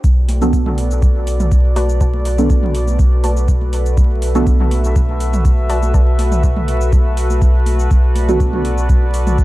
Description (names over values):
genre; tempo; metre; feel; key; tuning
dub techno; 122 BPM; 4/4; straight; B minor; A4 = 440 Hz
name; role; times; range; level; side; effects
warbly tape-like pad; sustained chords; 0.3-9.4 s; F#4 to E5; -23 LUFS; equal; chorus, built-in reverb, sidechain pumping
soft dub sub bass; bass; 0.0-9.4 s; B1; -17 LUFS; equal; sidechain pumping
electronic kick drum; drums; 0.0-9.4 s; none; -14 LUFS; equal; none
electronic shaker and hi-hat; drums; 0.0-9.4 s; none; -34 LUFS; equal; none
electronic congas and toms; percussion; 0.3-9.4 s; none; -26 LUFS; right 1 dB; overdrive, sidechain pumping on perc, sidechain pumping on toms, dub echo
deep mellow chord stab; stabs; 0.4-9.4 s; B3 to A4; -21 LUFS; right 2 dB; chorus, phaser, sidechain pumping, dub echo
warbly dusty pluck; riff; 1.8-6.1 s; F#4 to A5; -29 LUFS; left 3 dB; chorus, sidechain pumping, dub echo
room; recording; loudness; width
digital ambience; dry, gritty hardware recording, vinyl crackle; -12 LUFS; side -17 dB against mid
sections
0.0-9.4 A section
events
none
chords
0.0 Bm7